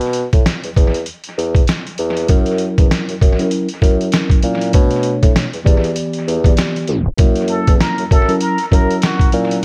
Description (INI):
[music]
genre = hip hop, boom-bap hip-hop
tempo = 98 BPM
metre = 4/4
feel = swing 60% on 16ths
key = unclear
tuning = A4 = 440 Hz
[part]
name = mellow bassoon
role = bass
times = 0.0-9.6 s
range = E2 to B2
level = -22 LUFS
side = equal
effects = none
[part]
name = trip hop sampler-style drum kit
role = drums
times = 0.0-9.6 s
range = hi-hat, kick drum, snare drum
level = -17 LUFS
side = equal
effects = vintage 12-bit sampler grit
[part]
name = mellow tine electric piano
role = accompaniment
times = 2.3-9.6 s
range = B2 to D5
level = -22 LUFS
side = equal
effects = high-pass filter, low-pass filter
[part]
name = trumpet with plunger mute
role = melody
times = 7.5-9.3 s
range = F#4 to A#4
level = -23 LUFS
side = equal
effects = high-pass filter, low-pass filter, dub echo
[sound]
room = little or no reverb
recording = echo-heavy mix, vinyl crackle, tape stop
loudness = -15 LUFS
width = mono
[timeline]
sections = 0.0-7.2 A section; 7.2-9.6 B section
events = break 0.0-2.3; tape stop 6.9-7.2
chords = 0.0 Esus4 (rootless); 0.8 N.C.; 2.3 F#7; 4.7 Bm9; 5.7 Em7; 7.2 F#7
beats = 0.45 1.06 1.68 | 2.29 2.90 3.51 4.13 | 4.74 5.35 5.96 6.58 | 7.19 7.80 8.41 9.03 | 9.64